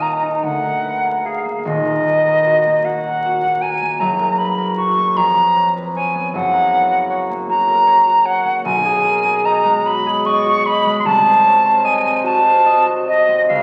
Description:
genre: classical, romantic duo for flute and harp.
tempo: 51 BPM (dotted quarters).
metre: 6/8.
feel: uneven beats, rubato.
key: unclear.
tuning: A4 = 440 Hz.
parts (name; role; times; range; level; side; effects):
silver concert flute; melody; 0.0-13.6 s; Eb5 to C#6; -17 LUFS; equal; none.
concert harp; accompaniment; 0.0-13.6 s; Eb1 to Eb5; -23 LUFS; equal; none.
room: wet recital hall reverb, RT60 1.6 s.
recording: very old 78 rpm record, vinyl crackle.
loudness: -16 LUFS.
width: mono.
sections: 0.0-13.6 A section.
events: none.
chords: 0.4 Bb7/D; 1.6 Ebm; 4.0 Gb; 5.2 Db7/F; 6.3 Gb; 8.7 G#m7/B; 11.0 Cdim7.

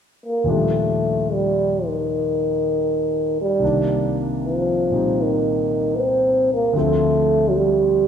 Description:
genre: jazz ballad.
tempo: 77 BPM.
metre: 4/4.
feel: swing 68% on 8ths.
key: unclear.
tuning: A4 = 440 Hz.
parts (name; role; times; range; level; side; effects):
trombone with cup mute; melody; 0.3-8.1 s; Eb3 to C4; -18 LUFS; right 1 dB; none.
warm concert grand piano; accompaniment; 0.4-8.1 s; C2 to A4; -23 LUFS; left 2 dB; none.
room: moderate recital hall reverb, RT60 1.4 s.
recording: recorded in a church or concert hall.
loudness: -17 LUFS.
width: side -8 dB against mid.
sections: 0.5-8.1 A section.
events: none.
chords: 0.5 Ebmaj7; 3.6 Cm7; 6.7 Dm7.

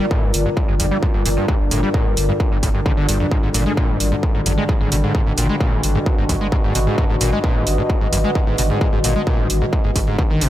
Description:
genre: driving peak-time techno.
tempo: 131 BPM.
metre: 4/4.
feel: straight.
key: unclear.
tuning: A4 = 440 Hz.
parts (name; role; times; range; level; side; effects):
screaming distorted acid line; riff; 0.0-10.5 s; F2 to Ab3; -22 LUFS; equal; distortion, analog chorus, sidechain pumping, dub echo.
analog drone; drone; 0.0-10.5 s; G2 to D3; -25 LUFS; equal; chorus, sidechain pumping.
deep dark ambient pad; texture; 0.0-10.5 s; F4 to Eb5; -25 LUFS; left 1 dB; chorus, built-in reverb, sidechain pumping.
electronic kick drum; drums; 0.1-10.3 s; none; -19 LUFS; equal; distortion, overdrive.
saturated sub bass; bass; 0.2-10.5 s; G1 to Ab1; -22 LUFS; equal; overdrive, sidechain pumping, low-pass filter.
electronic hi-hat; drums; 0.3-10.5 s; none; -23 LUFS; right 2 dB; overdrive.
room: light reverb.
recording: none.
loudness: -16 LUFS.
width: side -13 dB against mid.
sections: 0.0-10.5 A section.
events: none.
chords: 0.0 Gm; 3.3 Abm.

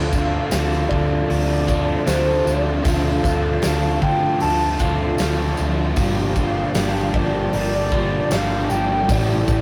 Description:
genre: rock, shoegaze and dream pop.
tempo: 77 BPM.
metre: 4/4.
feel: straight.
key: D minor.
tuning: A4 = 438 Hz.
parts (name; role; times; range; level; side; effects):
hollow clarinet-like synth lead; melody; 0.0-9.6 s; C5 to A5; -27 LUFS; equal; chorus.
string machine, cellos; sustained chords; 0.0-9.6 s; E4 to A5; -30 LUFS; equal; ensemble chorus.
overdriven semi-hollow guitar; riff; 0.0-9.6 s; G2 to G4; -30 LUFS; equal; none.
overdriven semi-hollow guitar; riff; 0.0-9.6 s; G2 to D4; -30 LUFS; equal; phaser.
raw garage guitar; riff; 0.0-9.6 s; G2 to G4; -30 LUFS; equal; overdrive.
hollow-body short-scale picked electric bass; bass; 0.0-9.6 s; G1 to D3; -26 LUFS; equal; none.
huge arena drum kit; drums; 0.1-9.6 s; hi-hat, kick drum, snare drum; -26 LUFS; equal; none.
tambourine; percussion; 0.1-9.6 s; none; -39 LUFS; equal; none.
room: moderate stone room reverb, RT60 1.4 s.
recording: rough rehearsal-room recording, warm saturation.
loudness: -20 LUFS.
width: mono.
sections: 0.0-9.6 A section.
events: none.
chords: 0.0 Dm7; 6.0 Gm7; 9.1 A7sus4.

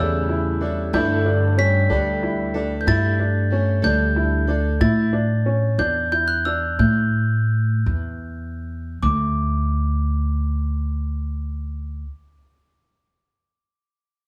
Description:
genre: folk.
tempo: 50-62 BPM (dotted quarters).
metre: 6/8.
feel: straight.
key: unclear.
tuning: A4 = 440 Hz.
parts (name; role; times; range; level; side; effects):
glockenspiel with soft plastic mallets; melody; 0.0-12.0 s; D6 to B6; -28 LUFS; equal; none.
warm French horn; second line; 0.0-2.9 s; C#3 to G3; -30 LUFS; equal; none.
bright upright piano; accompaniment; 0.0-2.9 s; G1 to D5; -34 LUFS; equal; none.
picked plugged-in twelve-string acoustic guitar; accompaniment; 0.0-4.8 s; A2 to A4; -30 LUFS; equal; none.
warm upright piano; arpeggios; 0.0-6.8 s; C#4 to D5; -28 LUFS; equal; none.
upright bass; bass; 0.0-12.0 s; D2 to A2; -23 LUFS; equal; none.
room: moderate large studio reverb, RT60 1.0 s.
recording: band playing live in one room.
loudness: -21 LUFS.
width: mono.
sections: 0.0-9.0 A section; 9.0-13.8 B section.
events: slowing down 4.8-9.0.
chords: 0.0 A7; 0.9 Gsus2; 4.8 A7(no3); 9.0 N.C..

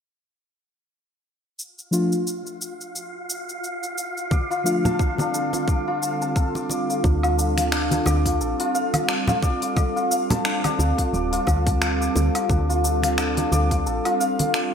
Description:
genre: organic downtempo.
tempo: 88 BPM.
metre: 4/4.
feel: swing 57% on 16ths.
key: D minor pentatonic.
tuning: A4 = 445 Hz.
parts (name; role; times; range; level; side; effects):
afro-pop drum kit; drums; 1.6-14.7 s; cabasa, finger snaps, hi-hat, woodblock; -28 LUFS; equal; none.
wind-like tuned noise texture; texture; 2.4-7.1 s; F4 to F5; -33 LUFS; equal; built-in reverb.
muted felt-like synth keys; accompaniment; 1.9-4.9 s; F3 to F4; -25 LUFS; left 1 dB; chorus, sidechain pumping, ping-pong delay.
warbly tape-like pad; sustained chords; 4.8-14.7 s; D3 to A4; -27 LUFS; right 1 dB; chorus, built-in reverb, sidechain pumping.
santur; arpeggios; 4.3-14.7 s; D4 to D6; -24 LUFS; left 1 dB; ping-pong delay.
electronic kick drum; drums; 4.3-13.8 s; none; -22 LUFS; equal; none.
congas; percussion; 4.3-14.5 s; none; -26 LUFS; left 1 dB; none.
woody FM bass; bass; 7.0-14.0 s; D1 to D2; -23 LUFS; equal; sidechain pumping.
room: moderate plate reverb, RT60 2.1 s.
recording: bright 1980s-style digital production.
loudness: -20 LUFS.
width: side -7 dB against mid.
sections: 1.6-7.0 A section; 7.0-14.7 B section.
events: none.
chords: 1.6 Dm.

